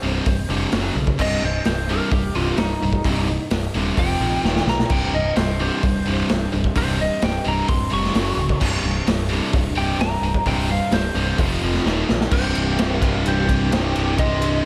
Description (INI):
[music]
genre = hard rock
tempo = 129 BPM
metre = 4/4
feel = straight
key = C minor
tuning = A4 = 440 Hz
[part]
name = lightly driven lead guitar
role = melody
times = 0.0-14.7 s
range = Eb4 to Db6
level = -29 LUFS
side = equal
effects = slapback echo, digital delay
[part]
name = heavy high-gain guitar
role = riff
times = 0.0-14.7 s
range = C2 to F#3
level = -30 LUFS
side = equal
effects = distortion
[part]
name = overdriven semi-hollow guitar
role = riff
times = 0.0-14.7 s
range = C2 to F#3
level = -28 LUFS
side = equal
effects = slapback echo
[part]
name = modern bright picked electric bass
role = bass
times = 0.0-14.6 s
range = C1 to B1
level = -27 LUFS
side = equal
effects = none
[part]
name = raw garage drum kit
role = drums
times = 0.3-14.5 s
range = crash cymbal, hi-hat, kick drum, ride cymbal, snare drum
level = -25 LUFS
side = equal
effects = none
[part]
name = distorted electric guitar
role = riff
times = 4.9-14.7 s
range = C2 to F#3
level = -33 LUFS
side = equal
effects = none
[part]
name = octave-fuzz lead guitar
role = second line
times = 12.3-14.6 s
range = G4 to C5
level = -33 LUFS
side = equal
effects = distortion, slapback echo, digital delay
[sound]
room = moderate lush hall reverb, RT60 1.9 s, small room ambience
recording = big arena sound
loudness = -20 LUFS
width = mono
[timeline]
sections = 0.0-12.3 A section; 12.3-14.7 B section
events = lead electric guitar solo 0.0-12.3; drum fill 4.4-4.9, 11.9-12.3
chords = 0.0 C5; 0.7 F#5; 1.2 Cm; 4.0 F5; 4.4 Eb5; 4.9 C5; 8.1 F#5; 8.6 C5; 11.4 F5; 11.9 Eb5; 12.3 C5